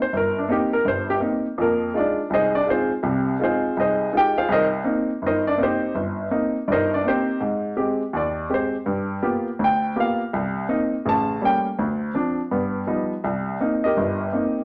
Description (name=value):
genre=solo jazz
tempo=164 BPM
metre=4/4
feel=swing 64% on 8ths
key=C minor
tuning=A4 = 440 Hz
part: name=clear upright piano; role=solo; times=0.0-14.6 s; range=G1 to A5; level=-22 LUFS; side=equal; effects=none
room=wet studio reverb, RT60 0.8 s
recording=none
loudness=-23 LUFS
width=mono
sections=0.0-13.2 A section; 13.2-14.6 B section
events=upright piano solo 0.0-13.2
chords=0.0 Cm7; 1.6 Fm7; 4.5 Cm7; 7.4 Abmaj7; 8.9 G7#9; 10.3 Cm7; 11.1 A7b9; 11.8 Dm7; 12.5 Gaug7; 13.2 Cm7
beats=| 0.12 0.48 0.84 1.21 | 1.57 1.94 2.30 2.66 | 3.03 3.39 3.76 4.12 | 4.49 4.85 5.21 5.58 | 5.94 6.31 6.67 7.04 | 7.40 7.77 8.13 8.50 | 8.86 9.23 9.59 9.96 | 10.32 10.69 11.05 11.42 | 11.78 12.15 12.51 12.88 | 13.24 13.61 13.97 14.34